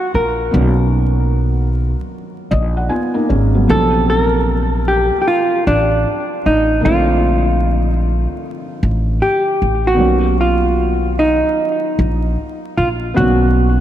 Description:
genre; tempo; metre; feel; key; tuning
hip hop; 76 BPM; 4/4; swing 65% on 16ths; unclear; A4 = 439 Hz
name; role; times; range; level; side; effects
hollow-body jazz guitar; melody; 0.0-13.8 s; D4 to A#4; -17 LUFS; equal; low-pass filter, analog delay
felt-muted upright piano; accompaniment; 0.0-13.8 s; C3 to Ab5; -20 LUFS; equal; low-pass filter
upright bass; bass; 0.1-13.8 s; Ab1 to B1; -16 LUFS; equal; none
room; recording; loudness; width
moderate cathedral reverb, RT60 5.1 s; dreamy mix soaked in reverb, vinyl crackle; -13 LUFS; side -11 dB against mid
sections
0.0-3.7 A section; 3.7-13.8 B section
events
none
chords
0.0 Bmaj9; 3.7 Bbmaj9; 10.0 Bmaj9

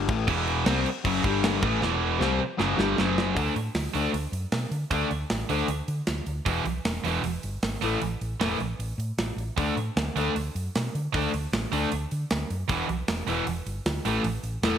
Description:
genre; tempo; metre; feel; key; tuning
hard rock; 154 BPM; 4/4; straight; unclear; A4 = 442 Hz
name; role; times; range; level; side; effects
overdriven semi-hollow guitar; riff; 0.0-14.8 s; E2 to D4; -29 LUFS; left 6 dB; wide subtle chorus
hollow-body short-scale fingered electric bass; bass; 0.0-14.8 s; E1 to D3; -31 LUFS; equal; none
tight metal drum kit; drums; 0.1-14.7 s; crash cymbal, hi-hat, kick drum, snare drum; -30 LUFS; right 1 dB; gated reverb
scooped high-gain guitar; riff; 0.3-14.8 s; E2 to D4; -30 LUFS; right 11 dB; distortion
room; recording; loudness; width
light reverb, studio reverb; bright 1980s-style digital production; -25 LUFS; side -9 dB against mid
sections
0.0-3.4 A section; 3.4-14.8 B section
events
drum fill 1.8-3.4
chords
0.1 Em; 1.2 G5; 1.6 Em; 3.0 F#5; 3.4 D5; 6.5 E5; 7.8 A5; 9.6 D5; 12.7 E5; 14.1 A5

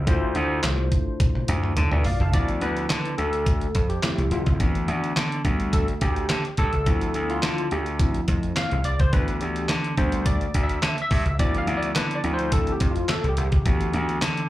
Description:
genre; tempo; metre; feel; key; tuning
early-eighties boogie funk; 106 BPM; 4/4; straight; D dorian; A4 = 440 Hz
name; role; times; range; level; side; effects
barky tine electric piano; accompaniment; 0.0-14.5 s; E3 to A5; -27 LUFS; left 1 dB; overdrive, analog chorus, slapback echo
gritty slap bass; bass; 0.0-14.5 s; C2 to D3; -25 LUFS; equal; overdrive
detuned 8-bit digital drum machine; drums; 0.1-14.5 s; handclaps, hi-hat, kick drum, snare drum, toms; -24 LUFS; equal; none
room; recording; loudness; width
little or no reverb; live gig heard through the venue's PA, club reverb, faint mains hum; -21 LUFS; side -15 dB against mid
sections
0.0-2.3 A section; 2.3-14.5 B section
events
drum fill 1.2-2.3; tine electric piano solo 2.3-14.5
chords
0.1 Dm9; 2.3 Dm69; 3.2 Fmaj13; 4.6 Bmadd11/D; 5.5 Gadd9; 6.9 Dm69; 7.7 Fmaj13; 9.1 G6/D; 10.0 Cmaj9; 11.4 Dm69; 12.2 Fmaj13; 13.7 G6/D

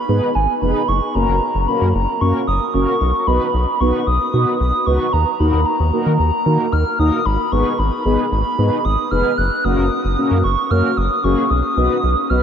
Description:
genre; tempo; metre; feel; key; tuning
synth-pop; 113 BPM; 4/4; straight; unclear; A4 = 439 Hz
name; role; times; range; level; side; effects
hollow clarinet-like synth lead; melody; 0.0-12.4 s; Ab5 to Gb6; -20 LUFS; right 1 dB; chorus, phaser, diffuse ambient delay
mellow synth brass; accompaniment; 0.1-12.4 s; Bb3 to Cb5; -19 LUFS; equal; chorus
round analog bass; bass; 0.1-12.4 s; F1 to Eb3; -18 LUFS; equal; none
room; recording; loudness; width
wet huge ambient reverb, RT60 7.7 s; dreamy mix soaked in reverb, nothing above 10.8 kHz; -15 LUFS; side -8 dB against mid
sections
0.0-12.4 A section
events
none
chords
0.0 Abm; 0.9 Gb; 3.0 B; 5.1 Ebm; 7.3 Abm; 9.4 Gb; 11.5 B

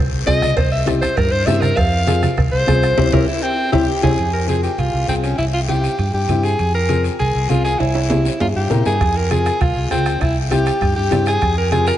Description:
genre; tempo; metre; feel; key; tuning
latin, cumbia; 199 BPM; 4/4; straight; F harmonic minor; A4 = 442 Hz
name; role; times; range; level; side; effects
fingered electric bass; bass; 0.0-11.9 s; C2 to Bb2; -20 LUFS; equal; none
congas; percussion; 0.1-11.9 s; none; -25 LUFS; right 3 dB; none
breathy alto saxophone; melody; 0.3-11.9 s; C4 to F5; -20 LUFS; equal; none
warm upright piano; accompaniment; 0.3-11.9 s; C4 to Bb4; -22 LUFS; left 5 dB; none
bombo; percussion; 0.3-4.1, 9.0-12.0 s; none; -22 LUFS; right 2 dB; none
guiro; percussion; 0.3-12.0 s; none; -33 LUFS; left 7 dB; none
cowbell and timbales; percussion; 0.6-12.0 s; none; -28 LUFS; right 3 dB; none
room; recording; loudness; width
moderate plate reverb, RT60 3.2 s; heard from further back in the room, nothing above 10.9 kHz; -15 LUFS; side -12 dB against mid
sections
0.0-4.2 A section; 4.2-12.0 B section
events
alto saxophone solo 0.0-4.2; band accent 3.0-4.2; drum fill 3.6-4.2, 7.8-9.0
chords
0.0 Fm; 0.6 C; 1.8 Fm; 3.0 C; 4.2 Fm; 5.4 C; 6.6 Fm; 7.8 C7; 9.0 Fm; 10.2 C; 11.4 Fm

